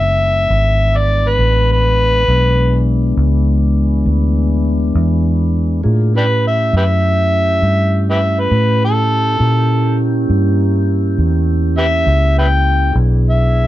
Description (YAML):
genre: slow blues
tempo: 67 BPM (dotted quarters)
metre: 12/8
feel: straight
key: unclear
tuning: A4 = 440 Hz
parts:
  - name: overdriven harmonica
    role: melody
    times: 0.0-13.7 s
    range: D4 to G5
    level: -16 LUFS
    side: left 1 dB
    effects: none
  - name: mellow tonewheel organ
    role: sustained chords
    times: 0.0-13.7 s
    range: E3 to G#4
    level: -20 LUFS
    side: left 1 dB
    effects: slow rotary speaker
  - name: vintage muted fingered electric bass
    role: bass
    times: 0.0-13.7 s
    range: F#1 to A#2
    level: -14 LUFS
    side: equal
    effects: none
room: light reverb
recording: dark, warm production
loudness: -12 LUFS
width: side -14 dB against mid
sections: 0.0-13.7 A section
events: harmonica solo 0.0-13.7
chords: 0.0 E7; 5.8 A7; 9.4 A#dim7; 13.0 E7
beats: 0.50 1.39 | 2.28 3.17 4.06 4.95 | 5.84 6.73 7.62 8.51 | 9.40 10.29 11.18 12.07 | 12.96